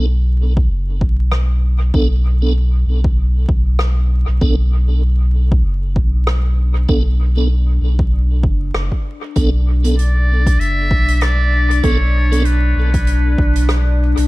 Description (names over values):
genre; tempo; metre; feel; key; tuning
ambient dub; 97 BPM; 4/4; swing 56% on 16ths; B minor; A4 = 440 Hz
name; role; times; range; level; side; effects
warm analog pad; sustained chords; 0.0-14.3 s; D4; -27 LUFS; left 2 dB; chorus, vintage 12-bit sampler grit
tonewheel organ; stabs; 0.0-12.4 s; B3 to A4; -24 LUFS; right 2 dB; chorus vibrato, fast rotary speaker, dub echo
warm sub bass; bass; 0.0-14.3 s; F#1 to B1; -14 LUFS; equal; none
electronic kick drum; drums; 0.6-13.5 s; none; -18 LUFS; equal; overdrive
soft-mallet drum kit; drums; 1.3-14.3 s; hi-hat, rim click; -27 LUFS; equal; dub echo
trumpet with metal mute; melody; 10.0-14.0 s; B4 to E5; -20 LUFS; equal; dub echo
room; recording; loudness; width
small room ambience; vinyl crackle; -13 LUFS; side -20 dB against mid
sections
0.0-14.3 A section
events
fade-in on analog synth pad 0.0-14.3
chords
0.0 Bm7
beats
0.08 0.70 1.32 | 1.94 2.56 3.18 3.79 | 4.41 5.03 5.65 6.27 | 6.89 7.51 8.12 8.74 | 9.36 9.98 10.60 11.22 | 11.84 12.46 13.07 13.69